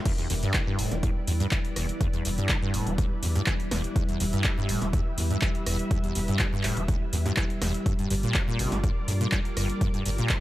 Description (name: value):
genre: acid house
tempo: 123 BPM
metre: 4/4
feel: straight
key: E minor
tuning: A4 = 436 Hz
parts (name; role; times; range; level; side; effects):
- string machine, full ensemble; sustained chords; 0.1-10.4 s; G3 to E5; -33 LUFS; equal; ensemble chorus, sidechain pumping
- acid bass, saw; riff; 0.1-10.4 s; E2 to Bb3; -30 LUFS; equal; tube saturation, ensemble chorus
- electronic kick drum; drums; 0.1-10.4 s; none; -27 LUFS; equal; none
- punchy analog drum machine; drums; 0.1-10.4 s; crash cymbal, handclaps, hi-hat, rim click, snare drum; -31 LUFS; equal; overdrive
- round analog bass; bass; 0.3-10.2 s; E1 to G2; -30 LUFS; equal; tube saturation, sidechain pumping
room: little or no reverb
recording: none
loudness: -24 LUFS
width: side -16 dB against mid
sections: 0.1-10.4 A section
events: drop 0.1-10.4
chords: 0.1 Em7; 7.9 Gm7